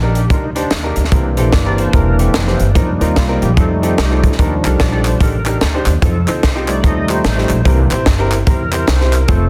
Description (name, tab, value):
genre	uptempo gospel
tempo	147 BPM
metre	4/4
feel	swing 62% on 8ths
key	unclear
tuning	A4 = 435 Hz
part	clear baby grand piano	accompaniment	0.0-9.4 s	C3 to C5	-23 LUFS	equal	none
part	upright bass	bass	0.0-9.5 s	E1 to F2	-18 LUFS	equal	none
part	bright tonewheel organ	sustained chords	0.1-9.5 s	E3 to Eb5	-23 LUFS	equal	fast rotary speaker, overdrive, chorus vibrato
part	crisp fusion drum kit	drums	0.2-9.4 s	hi-hat, kick drum, snare drum	-18 LUFS	equal	none
part	group handclap	percussion	4.6-9.2 s	none	-26 LUFS	equal	none
room	light reverb, studio ambience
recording	dense, heavily limited modern master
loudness	-14 LUFS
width	mono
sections	0.0-9.5 A section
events	tonewheel organ solo 0.0-9.5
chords	0.0 Ebmaj7; 1.1 C7; 2.8 F7sus4; 3.6 F7; 4.4 Ebmaj7; 7.7 C7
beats	0.30 0.71 | 1.12 1.53 1.94 2.35 | 2.76 3.17 3.57 3.98 | 4.39 4.80 5.21 5.62 | 6.02 6.43 6.84 7.25 | 7.66 8.06 8.47 8.88 | 9.29